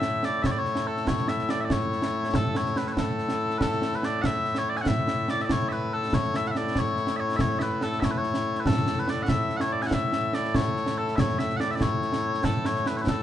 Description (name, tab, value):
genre	scottish traditional, Scottish pipe music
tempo	95 BPM (dotted quarters)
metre	6/8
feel	straight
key	A major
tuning	A4 = 440 Hz
part	mellow small bagpipes	melody	0.0-13.2 s	A2 to G#5	-26 LUFS	left 1 dB	none
part	concert snare drum and concert bass drum	drums	0.0-13.2 s	none	-27 LUFS	equal	none
room	moderate studio reverb, RT60 0.8 s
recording	band playing live in one room, nothing above 10.6 kHz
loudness	-24 LUFS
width	side -11 dB against mid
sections	0.0-3.6 A section; 3.6-13.2 A section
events	none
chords	none